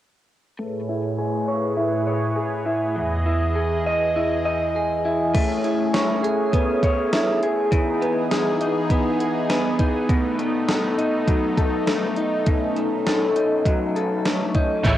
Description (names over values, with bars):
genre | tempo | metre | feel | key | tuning
dream pop | 101 BPM | 4/4 | straight | B mixolydian | A4 = 440 Hz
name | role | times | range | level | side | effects
phased analog pad | sustained chords | 0.6-15.0 s | E2 to D#5 | -24 LUFS | equal | phaser, chorus, low-pass filter, cassette tape
electric guitar through a small old amp | arpeggios | 0.6-15.0 s | B2 to D#5 | -22 LUFS | left 1 dB | wide subtle chorus, low-pass filter, cassette tape, tape echo
gated 80s digital drum machine | drums | 5.3-15.0 s | crash cymbal, hi-hat, kick drum, snare drum | -23 LUFS | equal | gated reverb, gated reverb snare, overdrive, cassette tape
overdriven electric guitar | accompaniment | 14.8-15.0 s | A3 to C#5 | -20 LUFS | right 2 dB | tremolo, ensemble chorus, cassette tape
vintage muted fingered electric bass | bass | 14.8-15.0 s | A1 | -22 LUFS | equal | none
room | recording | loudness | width
moderate spring reverb, RT60 1.3 s | home recording on cassette | -19 LUFS | side -12 dB against mid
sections
0.6-5.3 A section; 5.3-15.0 B section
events
filter sweep 0.6-5.3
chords
0.6 Amaj9; 3.0 Emaj7; 5.3 Amaj9; 7.7 Emaj7; 10.1 B7